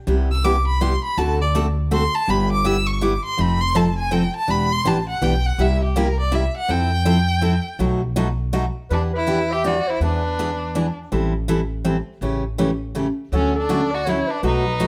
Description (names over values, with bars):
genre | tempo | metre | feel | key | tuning
acoustic string swing (jazz manouche) | 163 BPM | 3/4 | swing 61% on 8ths | E minor | A4 = 440 Hz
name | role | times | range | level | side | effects
picked steel-string acoustic guitar | accompaniment | 0.1-14.9 s | B2 to A4 | -24 LUFS | equal | none
upright bass | bass | 0.1-14.9 s | E1 to F2 | -25 LUFS | equal | none
clear violin | melody | 0.3-10.9, 13.4-14.9 s | C#4 to E6 | -26 LUFS | equal | plate reverb
growling clarinet | second line | 8.9-10.9, 13.3-14.9 s | A4 to E5 | -28 LUFS | equal | none
room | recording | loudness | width
light reverb | none | -21 LUFS | mono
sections
0.1-8.9 A section; 8.9-14.9 B section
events
violin solo 0.0-8.9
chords
0.1 Cmaj7; 1.2 D7; 2.3 G6; 3.4 F7; 4.5 Em7; 5.6 C7; 6.7 Fmaj7; 7.8 B7; 8.9 Em7; 10.0 E7; 11.1 Am7; 12.2 A7; 13.3 Dmaj7